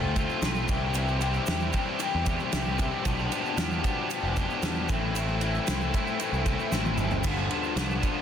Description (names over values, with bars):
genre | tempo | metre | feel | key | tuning
indie rock | 114 BPM | 4/4 | straight | G mixolydian | A4 = 441 Hz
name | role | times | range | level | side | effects
cranked stack guitar | riff | 0.0-8.2 s | E3 to G4 | -31 LUFS | right 7 dB | overdrive, analog chorus
raw garage guitar | riff | 0.0-8.2 s | G2 to G4 | -31 LUFS | left 9 dB | overdrive
growling picked electric bass | bass | 0.0-8.0 s | F1 to E2 | -30 LUFS | right 1 dB | overdrive
loose indie drum kit | drums | 0.2-8.2 s | crash cymbal, kick drum, ride cymbal, snare drum, toms | -31 LUFS | right 1 dB | none
tube shaker | percussion | 0.2-8.2 s | none | -46 LUFS | left 6 dB | none
room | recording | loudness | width
small room reverb | dense, heavily limited modern master | -25 LUFS | side -8 dB against mid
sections
0.0-8.2 A section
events
drum fill 6.7-7.2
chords
0.0 F6; 0.7 C; 3.0 G7/B; 4.9 Am; 7.2 G7